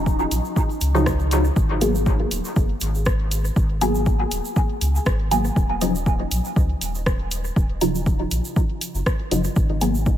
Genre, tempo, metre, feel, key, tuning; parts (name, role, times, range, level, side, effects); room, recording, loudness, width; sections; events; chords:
dub techno; 120 BPM; 4/4; straight; G# minor; A4 = 440 Hz
filtered dub chord stab; stabs; 0.0-10.0 s; C#3 to G#4; -24 LUFS; equal; phaser, cassette tape, sidechain pumping, dub echo
warm sub bass; bass; 0.0-10.2 s; D#1 to C#2; -24 LUFS; equal; sidechain pumping
bubbling stepped-filter texture; texture; 0.0-1.6 s; D#4 to D#5; -41 LUFS; left 2 dB
electronic kick drum; drums; 0.1-10.2 s; -20 LUFS; equal
egg shaker; percussion; 0.1-10.2 s; -34 LUFS; right 6 dB
punchy analog drum machine; drums; 0.3-9.9 s; hi-hat, rim click; -30 LUFS; equal; dub echo
moderate cathedral reverb, RT60 4.7 s; dreamy mix soaked in reverb; -19 LUFS; side -11 dB against mid
0.0-1.6 A section; 1.6-10.2 A section
filter sweep on synth stab 1.6-10.2
0.0 D#7(no3); 1.6 G#m9; 5.6 D#m9; 9.6 G#m9